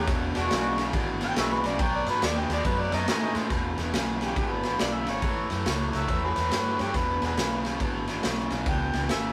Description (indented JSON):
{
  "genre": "electric blues shuffle",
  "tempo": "140 BPM",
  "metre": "4/4",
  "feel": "swing 63% on 8ths",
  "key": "E mixolydian",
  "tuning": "A4 = 440 Hz",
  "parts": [
    { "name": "overdriven harmonica", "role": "melody", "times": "0.0-9.3 s", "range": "F#4 to G5", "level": "-33 LUFS", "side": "equal", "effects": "none" },
    { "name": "crunchy overdriven guitar", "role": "riff", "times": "0.0-9.3 s", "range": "E2 to G#3", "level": "-32 LUFS", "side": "equal", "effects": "none" },
    { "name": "warm horn section", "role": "stabs", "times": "0.0-3.5 s", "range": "G#3 to F#4", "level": "-33 LUFS", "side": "equal", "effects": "none" },
    { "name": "vintage muted fingered electric bass", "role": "bass", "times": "0.0-9.3 s", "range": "E1 to A2", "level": "-36 LUFS", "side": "equal", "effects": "none" },
    { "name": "raw garage drum kit", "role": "drums", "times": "0.1-9.2 s", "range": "kick drum, ride cymbal, snare drum", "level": "-31 LUFS", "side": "equal", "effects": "none" }
  ],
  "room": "moderate studio reverb, RT60 0.6 s",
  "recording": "rough rehearsal-room recording",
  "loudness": "-27 LUFS",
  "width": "mono",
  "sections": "0.0-3.5 A section; 3.5-9.3 B section",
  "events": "harmonica solo 0.0-3.5",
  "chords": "0.1 E9; 1.8 B9; 3.5 E; 5.2 A9; 6.9 E"
}